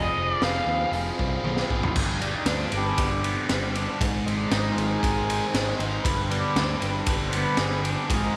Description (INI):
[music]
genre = psychedelic rock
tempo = 117 BPM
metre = 4/4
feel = straight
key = G phrygian dominant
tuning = A4 = 440 Hz
[part]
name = biting lead guitar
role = melody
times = 0.0-0.9 s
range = Eb5 to F5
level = -29 LUFS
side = equal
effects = wah, overdrive, slapback echo
[part]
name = combo organ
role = sustained chords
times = 0.0-8.4 s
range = D3 to B5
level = -32 LUFS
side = equal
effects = spring reverb
[part]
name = cranked stack guitar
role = riff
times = 0.0-8.4 s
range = G2 to Ab4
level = -31 LUFS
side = equal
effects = overdrive, phaser
[part]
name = overdriven picked electric bass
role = bass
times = 0.0-8.3 s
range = F1 to Eb2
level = -33 LUFS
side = equal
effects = none
[part]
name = raw garage drum kit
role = drums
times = 0.4-8.2 s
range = crash cymbal, hi-hat, kick drum, ride cymbal, snare drum, toms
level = -30 LUFS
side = equal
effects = none
[sound]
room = moderate echo chamber reverb, RT60 2.2 s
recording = none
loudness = -25 LUFS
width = mono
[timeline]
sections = 0.0-2.0 A section; 2.0-8.4 B section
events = drum fill 1.4-2.0; transistor combo organ solo 2.0-8.4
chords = 0.0 Fmadd9; 2.0 G; 4.0 Ab; 6.0 G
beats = 0.42 0.93 1.44 | 1.96 2.47 2.98 3.49 | 4.00 4.51 5.02 5.54 | 6.05 6.56 7.07 7.58 | 8.09